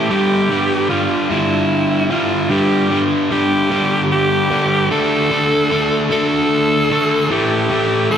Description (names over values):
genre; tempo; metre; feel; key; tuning
rock; 50 BPM (dotted quarters); 6/8; straight; unclear; A4 = 440 Hz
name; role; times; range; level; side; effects
raspy alto saxophone; melody; 0.0-8.2 s; E4 to A4; -17 LUFS; equal; diffuse ambient delay
distorted electric guitar; riff; 0.0-8.2 s; G2 to D4; -16 LUFS; equal; distortion
room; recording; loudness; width
wet plate reverb, RT60 2.9 s; dreamy mix soaked in reverb; -14 LUFS; side -8 dB against mid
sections
0.0-8.2 A section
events
none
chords
0.1 G5; 4.9 D5; 7.3 A5